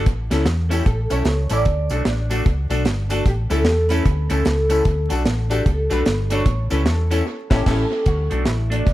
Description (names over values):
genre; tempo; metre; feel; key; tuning
ska; 150 BPM; 4/4; swing 62% on 8ths; unclear; A4 = 440 Hz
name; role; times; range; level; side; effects
oud; melody; 0.0-8.9 s; D4 to D5; -25 LUFS; right 1 dB; tape echo
clean electric guitar; accompaniment; 0.0-8.8 s; A3 to A4; -27 LUFS; right 1 dB; phaser
hollow-body short-scale fingered electric bass; bass; 0.0-8.9 s; G1 to E2; -21 LUFS; equal; none
deep reggae drum kit; drums; 0.1-8.9 s; crash cymbal, hi-hat, kick drum, snare drum; -21 LUFS; equal; tape echo
clear upright piano; stabs; 0.3-7.8 s; C#4 to A4; -28 LUFS; left 5 dB; tape echo
tambourine; percussion; 0.3-7.2 s; none; -41 LUFS; right 3 dB; tape echo
room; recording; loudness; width
small room ambience; vinyl crackle; -17 LUFS; side -15 dB against mid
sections
0.0-8.1 A section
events
oud solo 0.0-8.1; band accent 7.3-8.1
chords
0.1 A; 1.7 D; 3.3 A; 4.9 D; 6.5 A; 8.1 D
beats
| 0.07 0.47 0.86 1.26 | 1.66 2.06 2.46 2.86 | 3.26 3.66 4.06 4.46 | 4.86 5.26 5.66 6.06 | 6.46 6.86 7.26 7.66 | 8.06 8.46 8.86